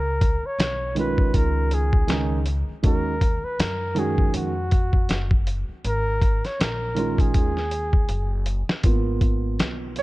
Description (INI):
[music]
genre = hip hop, jazz-hop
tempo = 80 BPM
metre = 4/4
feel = swing 58% on 16ths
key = G# dorian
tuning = A4 = 440 Hz
[part]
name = breathy flugelhorn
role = melody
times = 0.0-8.5 s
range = F#4 to C#5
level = -28 LUFS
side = equal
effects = none
[part]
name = upright bass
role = bass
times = 0.0-10.0 s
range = F#1 to F#2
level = -26 LUFS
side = equal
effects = none
[part]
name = lo-fi sampler-style drum kit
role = drums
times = 0.2-10.0 s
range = hi-hat, kick drum, snare drum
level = -21 LUFS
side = equal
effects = none
[part]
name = dark concert grand piano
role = accompaniment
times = 1.0-10.0 s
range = D#3 to C#5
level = -26 LUFS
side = right 4 dB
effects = none
[sound]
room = little or no reverb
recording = dark, warm production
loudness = -20 LUFS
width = side -19 dB against mid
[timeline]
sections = 0.0-8.8 A section; 8.8-10.0 B section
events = drum fill 8.1-8.8; grand piano solo 8.8-10.0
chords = 0.0 C#9; 2.8 D#m9; 5.8 G#sus2; 8.8 G#m69